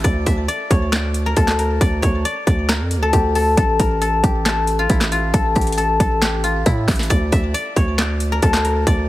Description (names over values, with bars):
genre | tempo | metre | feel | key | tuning
hip hop, trap | 136 BPM | 4/4 | half-time | D harmonic minor | A4 = 440 Hz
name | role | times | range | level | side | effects
guzheng | melody | 0.0-9.1 s | E4 to E5 | -20 LUFS | left 2 dB | ping-pong delay
distorted 808-style bass | bass | 0.0-9.1 s | A1 to A2 | -20 LUFS | equal | distortion
trap drum kit | drums | 0.0-9.0 s | handclaps, hi-hat, kick drum, snare drum | -19 LUFS | equal | overdrive
room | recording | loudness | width
little or no reverb | heavily compressed radio sound, multiband compression | -15 LUFS | side -16 dB against mid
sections
0.0-9.1 A section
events
none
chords
0.0 D5; 3.6 A5; 7.1 D5